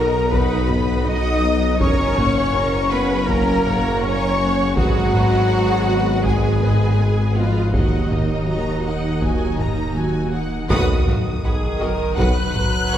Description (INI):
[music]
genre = cinematic, hybrid orchestral and electronic film score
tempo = 81 BPM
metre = 4/4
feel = straight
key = unclear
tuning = A4 = 440 Hz
[part]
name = warm symphonic violin section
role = melody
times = 0.0-13.0 s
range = Cb5 to F#6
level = -31 LUFS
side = left 2 dB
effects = none
[part]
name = clear studio violin section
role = second line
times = 0.0-13.0 s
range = F#4 to D#6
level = -27 LUFS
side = left 3 dB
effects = none
[part]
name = rich symphonic viola section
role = accompaniment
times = 0.0-13.0 s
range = Gb3 to Db5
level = -27 LUFS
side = right 1 dB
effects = none
[part]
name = mellow French horn section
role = sustained chords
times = 0.0-13.0 s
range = Eb3 to Bb4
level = -24 LUFS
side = left 2 dB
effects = none
[part]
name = clear studio cello section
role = bass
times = 0.0-13.0 s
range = B2 to D#5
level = -26 LUFS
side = right 2 dB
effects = none
[part]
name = pure sine sub bass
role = bass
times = 0.0-13.0 s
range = Eb1 to B1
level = -28 LUFS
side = equal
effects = none
[part]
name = rich symphonic double bass section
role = bass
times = 0.0-13.0 s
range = Gb1 to Eb2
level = -23 LUFS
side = equal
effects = none
[part]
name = warm tuba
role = bass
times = 0.0-13.0 s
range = Gb1 to Eb2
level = -26 LUFS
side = right 1 dB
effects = none
[part]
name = solo taiko drums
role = drums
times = 0.3-12.9 s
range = none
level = -24 LUFS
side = equal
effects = none
[part]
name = sub drop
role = sound effects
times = 10.7-13.0 s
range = none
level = -26 LUFS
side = equal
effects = none
[sound]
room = wet concert hall reverb, RT60 2.2 s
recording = heard from further back in the room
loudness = -16 LUFS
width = side -10 dB against mid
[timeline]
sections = 0.0-10.7 A section; 10.7-13.0 B section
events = band accent 10.7-11.4; impact 10.7-13.0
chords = 0.0 B; 1.8 Gb; 4.8 Abm; 7.7 Ebm; 10.7 B